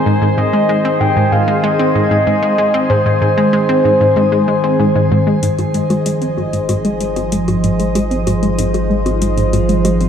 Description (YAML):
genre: ambient, sequencer-driven space music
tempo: 95 BPM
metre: 4/4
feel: straight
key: Ab major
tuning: A4 = 440 Hz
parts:
  - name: evolving wavetable pad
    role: sustained chords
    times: 0.0-10.1 s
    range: Eb3 to C5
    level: -16 LUFS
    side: left 1 dB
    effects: phaser, built-in reverb, shimmer reverb
  - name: analog pluck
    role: riff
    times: 0.1-10.1 s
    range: Ab2 to C4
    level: -16 LUFS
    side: equal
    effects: chorus, shimmer reverb, ping-pong delay
  - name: soft octave-layered synth lead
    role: melody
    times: 0.4-4.8 s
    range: C5 to G5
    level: -17 LUFS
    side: equal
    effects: chorus, shimmer reverb, ping-pong delay
  - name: round analog bass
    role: bass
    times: 5.4-10.1 s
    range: Ab1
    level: -20 LUFS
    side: equal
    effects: none
  - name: electronic hi-hat and bongos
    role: percussion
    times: 5.4-10.1 s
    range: none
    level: -26 LUFS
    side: left 4 dB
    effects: ping-pong delay
  - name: bubbling stepped-filter texture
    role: texture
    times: 5.8-10.1 s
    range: Eb5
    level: -27 LUFS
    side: right 2 dB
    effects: chorus, built-in reverb, shimmer reverb
room: wet huge ambient reverb, RT60 7.3 s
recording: none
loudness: -12 LUFS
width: side -8 dB against mid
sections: 0.0-5.4 A section; 5.4-10.1 B section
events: filter sweep on synth arpeggio sound 5.4-10.1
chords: 0.0 Ab; 5.4 Ab6